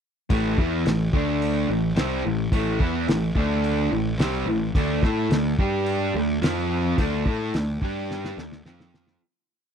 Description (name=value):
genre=classic rock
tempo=108 BPM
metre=4/4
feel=straight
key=unclear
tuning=A4 = 440 Hz
part: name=overdriven electric guitar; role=riff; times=0.3-9.2 s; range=A2 to A4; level=-23 LUFS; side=equal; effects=none
part: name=fuzz picked electric bass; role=bass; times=0.3-9.2 s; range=A1 to A2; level=-29 LUFS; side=equal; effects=overdrive
part: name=cloth-damped thuddy drum kit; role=drums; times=0.3-9.2 s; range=hi-hat, kick drum, snare drum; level=-24 LUFS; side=equal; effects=none
room=small room reverb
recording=dry, close 1970s-style studio recording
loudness=-21 LUFS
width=side -7 dB against mid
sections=0.3-9.2 verse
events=fade-out 7.0-9.2; drum fill 8.1-9.2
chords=0.3 A5; 1.1 D5; 1.7 A5; 3.4 D5; 3.9 A5; 4.7 D5; 5.6 G5; 6.1 D5; 6.4 F5; 7.0 D5; 7.8 G5; 8.4 D5; 8.6 F5